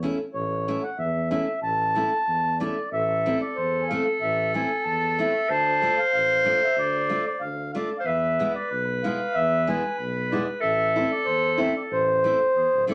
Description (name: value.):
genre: alpine folk, alpine dance band.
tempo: 93 BPM.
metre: 2/4.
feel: straight.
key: A harmonic minor.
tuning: A4 = 439 Hz.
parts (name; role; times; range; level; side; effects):
picked steel-string acoustic guitar; accompaniment; 0.0-12.9 s; G#3 to F4; -31 LUFS; equal; none.
mellow tuba; bass; 0.0-12.9 s; D1 to E2; -34 LUFS; equal; none.
mellow accordion; melody; 0.3-12.9 s; B4 to B5; -27 LUFS; equal; none.
bright clarinet; second line; 2.9-12.9 s; G#4 to C5; -28 LUFS; equal; none.
room: wet studio ambience, RT60 0.5 s.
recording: none.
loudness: -24 LUFS.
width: mono.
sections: 0.0-2.9 A section; 2.9-12.9 B section.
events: none.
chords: 0.0 A; 2.9 Am; 5.5 Dm; 8.1 E; 10.6 Am.